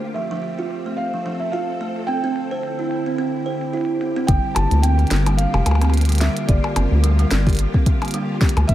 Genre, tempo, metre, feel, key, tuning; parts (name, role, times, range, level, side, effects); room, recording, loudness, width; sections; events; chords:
IDM; 109 BPM; 4/4; swing 56% on 16ths; G dorian; A4 = 440 Hz
soft string machine; sustained chords; 0.0-8.7 s; D3 to A4; -27 LUFS; equal; ensemble chorus
felt-muted upright piano; melody; 0.1-8.7 s; D5 to A5; -28 LUFS; right 1 dB; tape echo
buzzing kalimba; arpeggios; 0.2-8.7 s; F3 to C5; -25 LUFS; right 3 dB; vintage 12-bit sampler grit, dub echo
glitchy drum kit; drums; 0.2-8.7 s; hi-hat, percussion blips, snare drum; -26 LUFS; left 1 dB; overdrive, low-pass filter on hats, low-pass filter on perc, low-pass filter on snare, low-pass filter on room
rubbery square bass; bass; 4.3-8.7 s; F1 to D2; -16 LUFS; equal; tube saturation
electronic kick drum; drums; 4.3-8.7 s; -18 LUFS; equal; overdrive
light reverb, digital ambience; echo-heavy mix; -17 LUFS; side -13 dB against mid
0.0-4.3 A section; 4.3-8.7 B section
0.0 Fmaj7; 2.1 Cadd9; 4.3 Gm7